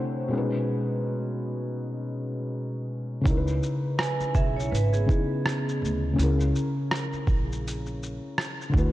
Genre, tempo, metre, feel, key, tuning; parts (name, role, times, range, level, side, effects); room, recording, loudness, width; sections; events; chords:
lo-fi hip hop; 82 BPM; 4/4; swing 60% on 16ths; C# dorian; A4 = 440 Hz
felt-muted upright piano; accompaniment; 0.0-8.9 s; B2 to F#5; -28 LUFS; left 1 dB; cassette tape, low-pass filter
upright bass; bass; 3.3-8.9 s; G#1 to D2; -27 LUFS; right 1 dB
boom bap sampler-style drum kit; drums; 3.3-8.9 s; hi-hat, kick drum, rim click, shaker; -27 LUFS; right 1 dB; overdrive
vibraphone with medium hard mallets; second line; 4.0-6.0 s; B3 to G#5; -32 LUFS; right 4 dB; low-pass filter, ping-pong delay
moderate plate reverb, RT60 2.6 s; dreamy mix soaked in reverb, cassette tape; -25 LUFS; side -15 dB against mid
0.0-3.2 A section; 3.2-8.9 B section
0.3 B6; 3.2 C#m7; 6.2 A#m7b5